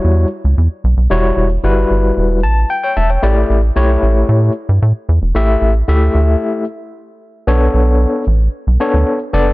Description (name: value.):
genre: early-eighties boogie funk.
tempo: 113 BPM.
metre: 4/4.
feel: straight.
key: E dorian.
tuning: A4 = 440 Hz.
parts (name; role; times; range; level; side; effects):
overdriven tine electric piano; accompaniment; 0.0-9.5 s; G3 to A5; -16 LUFS; left 2 dB; fast tremolo.
rubbery square bass; bass; 0.0-9.5 s; E1 to A2; -12 LUFS; equal; none.
room: little or no reverb.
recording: none.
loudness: -11 LUFS.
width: side -20 dB against mid.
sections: 0.0-7.5 A section; 7.5-9.5 B section.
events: tine electric piano fill 2.2-3.2; break 6.4-7.5.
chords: 0.0 Em69; 3.2 A7sus4; 7.5 Bm9.